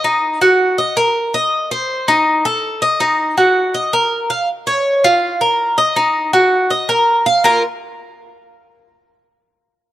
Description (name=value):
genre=latin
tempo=162 BPM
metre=4/4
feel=straight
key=Bb harmonic minor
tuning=A4 = 440 Hz
part: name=Cuban tres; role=solo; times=0.0-7.6 s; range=Bb3 to F5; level=-13 LUFS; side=equal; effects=none
room=moderate plate reverb, RT60 2.5 s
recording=lossy compression artefacts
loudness=-13 LUFS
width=side -13 dB against mid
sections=0.0-4.5 A section; 4.5-7.4 B section; 7.4-8.9 C section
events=none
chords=0.0 Ebm; 1.5 Adim; 3.0 Ebm; 4.5 Bbm; 6.0 Ebm; 7.4 Bb5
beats=| 0.04 0.41 0.78 1.15 | 1.52 1.89 2.26 2.63 | 3.00 3.37 3.75 4.12 | 4.49 4.86 5.23 5.60 | 5.97 6.34 6.71 7.08 | 7.45